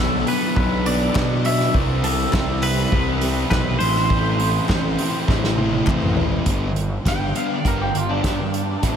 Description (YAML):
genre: indie rock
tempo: 102 BPM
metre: 4/4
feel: straight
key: G major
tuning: A4 = 440 Hz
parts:
  - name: twangy electric guitar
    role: melody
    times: 0.0-9.0 s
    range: D4 to G5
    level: -25 LUFS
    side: equal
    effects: lush chorus
  - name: string machine, cellos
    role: sustained chords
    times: 0.0-6.4 s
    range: D3 to E5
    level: -33 LUFS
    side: left 1 dB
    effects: none
  - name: thick fuzz guitar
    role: riff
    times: 0.0-9.0 s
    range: A2 to E4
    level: -23 LUFS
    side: left 1 dB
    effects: distortion
  - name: fuzz picked electric bass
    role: bass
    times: 0.0-9.0 s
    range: G1 to B2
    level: -23 LUFS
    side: equal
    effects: overdrive
  - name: unplugged drum kit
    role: drums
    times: 0.3-9.0 s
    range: hi-hat, kick drum, snare drum, toms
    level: -23 LUFS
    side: equal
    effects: none
  - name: group handclap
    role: percussion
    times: 1.2-6.0 s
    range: none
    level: -39 LUFS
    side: left 4 dB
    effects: none
room: moderate huge ambient reverb, RT60 7.3 s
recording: dreamy mix soaked in reverb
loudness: -18 LUFS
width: side -8 dB against mid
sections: 0.0-6.5 A section; 6.5-9.0 B section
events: drum fill 5.3-6.5; clean electric guitar solo 6.5-9.0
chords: 0.0 Bm; 1.7 C; 3.8 Am; 6.5 G